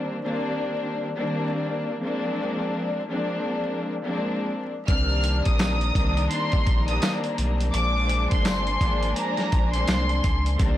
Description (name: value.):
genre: hip hop, boom-bap hip-hop.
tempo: 84 BPM.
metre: 4/4.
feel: swing 60% on 16ths.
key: C minor.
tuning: A4 = 441 Hz.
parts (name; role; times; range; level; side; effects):
warm studio string section; accompaniment; 0.0-10.8 s; Eb3 to D4; -27 LUFS; left 1 dB; cassette tape, high-pass filter, low-pass filter.
warm studio violin section; melody; 4.9-10.6 s; Bb5 to F6; -28 LUFS; equal; high-pass filter, low-pass filter, tape echo.
warm studio string section; sustained chords; 4.9-10.8 s; Eb3 to Bb5; -34 LUFS; left 1 dB; high-pass filter, low-pass filter.
warm sub bass; bass; 4.9-10.8 s; G1 to Db2; -25 LUFS; equal; transformer saturation.
dusty soul sampler-style drum kit; drums; 4.9-10.8 s; handclaps, hi-hat, kick drum, snare drum; -24 LUFS; equal; none.
tambourine; percussion; 5.6-10.1 s; none; -40 LUFS; right 6 dB; none.
room: light reverb.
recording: blown-out, overdriven recording, vinyl crackle, overdrive.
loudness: -22 LUFS.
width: side -13 dB against mid.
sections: 0.0-4.9 A section; 4.9-10.8 B section.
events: none.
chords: 0.0 Cm9; 2.0 Bb9; 4.9 Cm9; 7.7 Bb9.